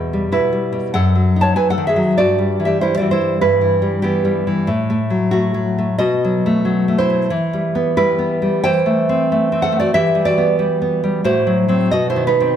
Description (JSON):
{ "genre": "romantic piece for solo classical guitar", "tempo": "81-100 BPM", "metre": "4/4", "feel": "rubato", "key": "E minor", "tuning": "A4 = 441 Hz", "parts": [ { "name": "nylon-string guitar", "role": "solo", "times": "0.0-12.6 s", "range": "E2 to A5", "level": "-14 LUFS", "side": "equal", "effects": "none" } ], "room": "wet recital hall reverb, RT60 1.6 s", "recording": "none", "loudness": "-14 LUFS", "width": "side -9 dB against mid", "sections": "0.0-12.6 A section", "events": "none", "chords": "0.0 Em; 1.0 D#dim/F#; 2.2 Em/G; 4.7 F#m/A; 6.0 B7; 7.3 Em; 8.7 Am/E; 9.9 Em; 11.3 F#dim/A; 11.9 B", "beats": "0.32 0.95 1.58 | 2.20 2.83 3.44 4.05 | 4.68 5.33 6.02 6.68 | 7.33 7.97 8.65 9.30 | 9.94 10.59 11.25 11.92" }